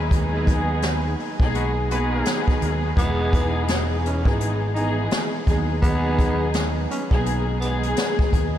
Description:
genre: hip hop, boom-bap hip-hop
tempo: 84 BPM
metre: 4/4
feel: swing 60% on 16ths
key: G# minor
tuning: A4 = 440 Hz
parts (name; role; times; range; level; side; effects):
- dark studio string section; accompaniment; 0.0-8.6 s; D#2 to G#4; -25 LUFS; equal; high-pass filter, low-pass filter
- fingered electric bass; bass; 0.0-8.6 s; E1 to D#2; -24 LUFS; equal; none
- jazz brush drum kit; drums; 0.1-8.5 s; hi-hat, kick drum, snare drum; -23 LUFS; equal; none
- mellow trumpet section; stabs; 0.5-2.4 s; G#3 to B4; -33 LUFS; left 1 dB; high-pass filter, low-pass filter, ping-pong delay
- growling tenor saxophone; melody; 3.0-7.8 s; B3 to D#4; -31 LUFS; equal; high-pass filter, low-pass filter, ping-pong delay
room: moderate huge ambient reverb, RT60 8.4 s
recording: dreamy mix soaked in reverb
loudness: -19 LUFS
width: side -11 dB against mid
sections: 0.0-8.6 A section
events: none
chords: 0.0 G#m7/D#; 3.0 Emaj7; 5.5 G#m7/D#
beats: | 0.11 0.83 1.54 2.26 | 2.97 3.69 4.40 5.11 | 5.83 6.54 7.26 7.97

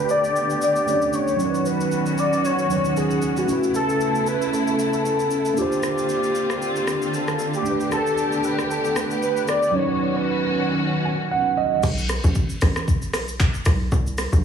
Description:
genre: amapiano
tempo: 115 BPM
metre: 4/4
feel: swing 55% on 16ths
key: unclear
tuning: A4 = 440 Hz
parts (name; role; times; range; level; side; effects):
- warm velvety synth lead; melody; 0.0-10.9 s; F#4 to D5; -23 LUFS; left 2 dB; chorus, low-pass filter, digital delay
- tine electric piano; accompaniment; 0.0-11.9 s; F#3 to G#5; -25 LUFS; right 5 dB; phaser, low-pass filter
- warm studio string section; sustained chords; 0.0-11.8 s; C#3 to G4; -26 LUFS; left 1 dB; low-pass filter
- deep house drum kit; drums; 0.1-14.4 s; crash cymbal, handclaps, hi-hat, kick drum, rim click, shaker; -27 LUFS; equal; none
- tight log drum bass; bass; 11.8-14.4 s; A1 to C2; -21 LUFS; equal; none
room: light reverb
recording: heavily compressed radio sound, small room reverb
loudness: -19 LUFS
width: side -7 dB against mid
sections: 0.0-11.8 A section; 11.8-14.4 B section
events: filter sweep 0.0-11.8; tine electric piano fill 10.8-11.8; drop 11.8-14.4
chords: 0.0 A9sus4; 1.4 C#9sus4; 3.5 B9sus4; 5.6 C9sus4; 7.7 A9sus4; 9.7 C#9sus4; 11.8 Asus2; 13.9 C5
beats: 0.36 0.88 | 1.40 1.92 2.44 2.96 | 3.49 4.01 4.53 5.05 | 5.57 6.09 6.62 7.14 | 7.66 8.18 8.70 9.23 | 9.75 10.27 10.79 11.31 | 11.83 12.36 12.88 13.40 | 13.92 14.44

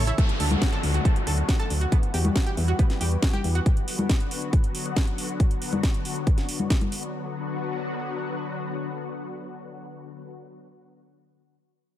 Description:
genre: uplifting trance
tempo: 138 BPM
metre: 4/4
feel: straight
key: B minor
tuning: A4 = 440 Hz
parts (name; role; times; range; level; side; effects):
- analog string pad; sustained chords; 0.0-10.3 s; C#3 to F#4; -32 LUFS; left 3 dB; ensemble chorus, sidechain pumping
- solid FM bass; bass; 0.0-3.6 s; A1 to E2; -23 LUFS; equal; sidechain pumping
- analog pluck; arpeggios; 0.1-3.6 s; A3 to A4; -34 LUFS; right 3 dB; lush chorus, sidechain pumping, dub echo
- house drum kit; drums; 0.1-7.1 s; congas, hi-hat, shaker, snare drum; -29 LUFS; left 1 dB; none
- electronic kick drum; drums; 0.2-6.8 s; none; -22 LUFS; equal; none
- downlifter; sound effects; 0.2-3.7 s; none; -34 LUFS; equal; none
room: little or no reverb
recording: none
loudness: -22 LUFS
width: side -12 dB against mid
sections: 0.2-7.1 A section; 7.1-10.6 B section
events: break 0.0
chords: 0.2 D; 1.9 Emadd9; 3.7 Bm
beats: | 0.18 0.62 1.05 1.49 | 1.92 2.35 2.79 3.23 | 3.66 4.09 4.53 4.96 | 5.40 5.83 6.27 6.70 | 7.14 7.57 8.01 8.44 | 8.88 9.31 9.75 10.18

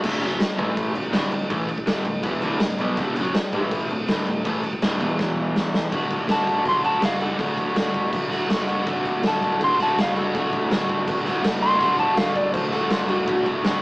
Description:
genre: garage rock duo or trio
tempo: 163 BPM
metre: 4/4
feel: straight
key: D major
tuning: A4 = 439 Hz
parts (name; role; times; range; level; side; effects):
- overdriven electric guitar; riff; 0.0-13.8 s; D2 to F#4; -24 LUFS; equal; none
- picked electric bass; bass; 0.0-13.8 s; D1 to B1; -33 LUFS; equal; none
- oversized low-tuned drum kit; drums; 0.0-13.7 s; crash cymbal, kick drum, snare drum; -24 LUFS; equal; none
- electric slide guitar; melody; 6.3-13.5 s; F4 to C6; -22 LUFS; equal; none
room: moderate stone room reverb, RT60 1.3 s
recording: rough rehearsal-room recording, small speaker sound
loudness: -20 LUFS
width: side -23 dB against mid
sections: 0.0-5.9 A section; 5.9-13.8 B section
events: drum fill 5.2-5.9; electric slide guitar solo 5.9-13.8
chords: 0.0 D; 0.6 A5; 1.0 D; 3.5 A5; 3.9 D5; 5.0 E5; 5.9 D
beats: | 0.03 0.40 0.77 1.14 | 1.51 1.88 2.25 2.61 | 2.98 3.35 3.72 4.09 | 4.45 4.82 5.19 5.56 | 5.92 6.29 6.66 7.03 | 7.40 7.76 8.13 8.50 | 8.87 9.24 9.61 9.97 | 10.34 10.71 11.08 11.45 | 11.82 12.19 12.55 12.92 | 13.29 13.66

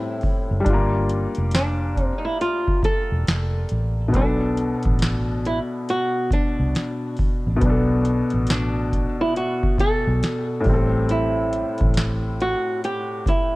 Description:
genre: lo-fi hip hop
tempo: 69 BPM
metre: 4/4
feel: swing 62% on 16ths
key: B phrygian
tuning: A4 = 441 Hz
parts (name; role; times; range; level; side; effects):
- felt-muted upright piano; accompaniment; 0.0-13.6 s; A2 to A4; -25 LUFS; left 2 dB; low-pass filter
- booming analog drum machine; drums; 0.2-13.5 s; hi-hat, kick drum, snare drum; -23 LUFS; equal; none
- vintage muted fingered electric bass; bass; 0.5-12.5 s; E1 to C2; -23 LUFS; equal; none
- flamenco guitar; melody; 1.5-13.6 s; D4 to A4; -25 LUFS; right 1 dB; low-pass filter
room: little or no reverb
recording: cassette tape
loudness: -19 LUFS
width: side -20 dB against mid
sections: 0.0-13.6 A section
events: none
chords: 0.0 Am7; 0.7 Gm7; 4.1 Bm7; 10.7 Am7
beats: | 0.66 1.53 2.40 3.27 | 4.14 5.01 5.88 6.75 | 7.62 8.49 9.36 10.23 | 11.10 11.96 12.83

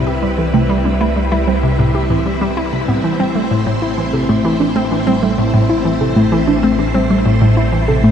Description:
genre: ambient, sequencer-driven space music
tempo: 96 BPM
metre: 4/4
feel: straight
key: A minor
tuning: A4 = 439 Hz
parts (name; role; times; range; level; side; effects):
- string machine, full ensemble; sustained chords; 0.0-8.1 s; G3 to C5; -19 LUFS; equal; phaser, ensemble chorus
- soft round pluck; arpeggios; 0.0-8.1 s; A2 to A4; -18 LUFS; right 1 dB; chorus, auto-pan, ping-pong delay
- fat analog bass; bass; 0.0-8.1 s; A1 to C2; -22 LUFS; equal; none
- hollow square pluck; riff; 0.1-8.1 s; A2 to G4; -16 LUFS; left 1 dB; chorus, phaser, ping-pong delay
room: moderate shimmer reverb, RT60 8.5 s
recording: dark, warm production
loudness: -12 LUFS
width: side -8 dB against mid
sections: 0.0-8.1 A section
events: filter sweep on synth arpeggio sound 0.0-8.1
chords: 0.0 Cmaj7; 3.0 Am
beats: | 0.54 1.16 1.79 2.41 | 3.04 3.66 4.29 4.91 | 5.54 6.16 6.79 7.41 | 8.04

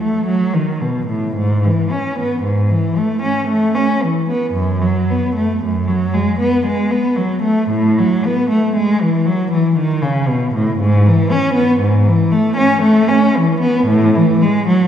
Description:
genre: classical, baroque-style suite movement for unaccompanied cello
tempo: 58 BPM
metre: 3/4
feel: rubato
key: E major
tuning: A4 = 440 Hz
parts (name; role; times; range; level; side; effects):
- rich cello; solo; 0.0-14.9 s; F#2 to C#4; -13 LUFS; equal; none
room: wet concert hall reverb, RT60 1.8 s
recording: heard from further back in the room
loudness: -13 LUFS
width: side -9 dB against mid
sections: 0.0-14.9 A section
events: none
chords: none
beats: 0.31 | 1.40 2.47 3.51 | 4.56 5.61 6.64 | 7.71 8.77 9.79 | 10.81 11.82 12.85 | 13.91

